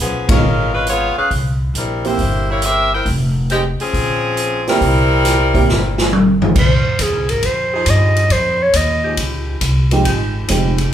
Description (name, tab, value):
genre	jazz, big band swing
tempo	137 BPM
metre	4/4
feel	swing 68% on 8ths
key	F minor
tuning	A4 = 439 Hz
part	bright saxophone section	melody	0.0-6.1 s	Eb3 to G5	-17 LUFS	left 1 dB	none
part	upright bass	bass	0.0-10.9 s	F1 to G2	-18 LUFS	equal	none
part	swinging big-band drum kit	drums	0.0-10.8 s	crash cymbal, hi-hat, kick drum, ride cymbal, snare drum, toms	-18 LUFS	equal	none
part	dark upright piano	accompaniment	0.3-6.5, 9.9-10.8 s	F2 to G4	-20 LUFS	right 4 dB	none
part	growling clarinet	melody	6.6-9.2 s	Ab4 to Eb5	-16 LUFS	right 1 dB	none
part	mellow saxophone section	sustained chords	7.7-10.9 s	F3 to Ab4	-26 LUFS	equal	none
room	moderate large studio reverb, RT60 1.1 s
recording	band playing live in one room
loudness	-13 LUFS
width	side -10 dB against mid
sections	0.0-6.6 A section; 6.6-10.9 B section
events	band accent 0.2; drum fill 5.7-6.6; clarinet solo 6.6-10.9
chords	0.0 Db7; 1.3 C7; 3.1 Fm; 3.9 Bbm9; 4.8 C7; 6.6 Fm9